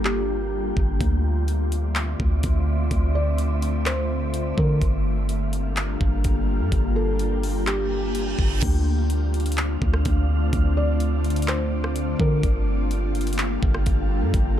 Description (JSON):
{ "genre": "hip hop, atmospheric cloud-rap", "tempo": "126 BPM", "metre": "4/4", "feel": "half-time", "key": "D minor", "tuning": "A4 = 440 Hz", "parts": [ { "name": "felt-muted upright piano", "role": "melody", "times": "0.0-12.4 s", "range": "G4 to D5", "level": "-32 LUFS", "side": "equal", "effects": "tape echo" }, { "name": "ethereal airy pad", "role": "sustained chords", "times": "0.0-14.6 s", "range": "D3 to E5", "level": "-28 LUFS", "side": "left 1 dB", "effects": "ensemble chorus, built-in reverb, sidechain pumping" }, { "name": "soft 808-style bass", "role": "bass", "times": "0.0-14.6 s", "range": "G1 to D3", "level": "-23 LUFS", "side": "equal", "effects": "none" }, { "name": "wind-like tuned noise texture", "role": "texture", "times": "0.0-14.6 s", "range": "Bb3 to G5", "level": "-36 LUFS", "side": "left 1 dB", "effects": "built-in reverb" }, { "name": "trap drum kit", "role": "drums", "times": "0.1-14.4 s", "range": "crash cymbal, handclaps, hi-hat, kick drum, rim click", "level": "-25 LUFS", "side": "equal", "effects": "none" }, { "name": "reverse cymbal", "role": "sound effects", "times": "7.9-8.6 s", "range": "none", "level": "-32 LUFS", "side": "right 6 dB", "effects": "none" } ], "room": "digital ambience", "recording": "dark, warm production", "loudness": "-20 LUFS", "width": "side -11 dB against mid", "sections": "0.0-8.6 A section; 8.6-14.6 B section", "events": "break 0.0-1.0; reverse cymbal 7.9-8.6", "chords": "0.0 Gm7; 1.0 Dm7; 4.8 Gm7; 8.6 Dm7; 12.4 Gm7" }